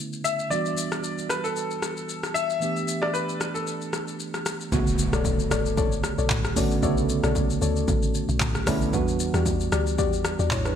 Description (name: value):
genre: amapiano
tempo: 114 BPM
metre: 4/4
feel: swing 55% on 16ths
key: unclear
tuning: A4 = 441 Hz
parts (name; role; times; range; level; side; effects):
- tine electric piano; accompaniment; 0.0-10.8 s; C#3 to C#5; -28 LUFS; right 4 dB; lush chorus, low-pass filter
- deep house drum kit; drums; 0.1-10.8 s; handclaps, hi-hat, kick drum, rim click, shaker, toms; -28 LUFS; left 1 dB; none
- clear baby grand piano; melody; 0.2-4.2 s; A4 to E5; -28 LUFS; left 2 dB; wide subtle chorus, low-pass filter, digital delay
- deep log drum bass; bass; 4.7-10.7 s; A1 to E2; -28 LUFS; equal; none
- impact; sound effects; 4.7-6.8 s; none; -34 LUFS; equal; none
- deep mellow chord stab; stabs; 5.1-10.5 s; F#4 to D5; -30 LUFS; left 9 dB; chorus, digital delay
room: moderate lush hall reverb, RT60 2.4 s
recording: bright 1980s-style digital production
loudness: -23 LUFS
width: side -9 dB against mid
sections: 0.0-4.7 A section; 4.7-10.8 B section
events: drop 4.7-10.8; impact 4.7-6.8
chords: 0.0 Bm9; 0.5 Em9; 2.6 A9sus4; 4.7 Bm9; 8.9 Em9